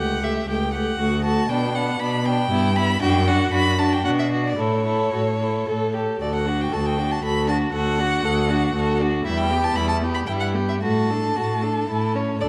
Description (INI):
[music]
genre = quick classical-period movement for string quartet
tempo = 117 BPM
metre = 3/4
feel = rubato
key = D major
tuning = A4 = 440 Hz
[part]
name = clear violin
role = melody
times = 0.0-12.5 s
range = C#5 to B5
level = -28 LUFS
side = equal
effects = none
[part]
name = rich violin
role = second line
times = 0.0-12.5 s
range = D4 to C#5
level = -28 LUFS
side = equal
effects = none
[part]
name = clear viola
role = accompaniment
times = 0.0-12.5 s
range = G3 to A4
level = -28 LUFS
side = equal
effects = none
[part]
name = clear cello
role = bass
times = 0.0-12.5 s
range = C#2 to B2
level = -26 LUFS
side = equal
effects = none
[sound]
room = moderate scoring stage reverb, RT60 1.8 s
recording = dark, warm production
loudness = -22 LUFS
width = mono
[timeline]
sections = 0.0-6.2 A section; 6.2-12.5 B section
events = none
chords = 0.0 A7/C#; 1.0 D; 1.5 Bm; 2.5 Em/G; 3.0 D/F#; 4.0 Bm; 4.6 A; 6.2 D; 9.3 Em; 10.3 Em/G; 10.8 D/A; 11.9 A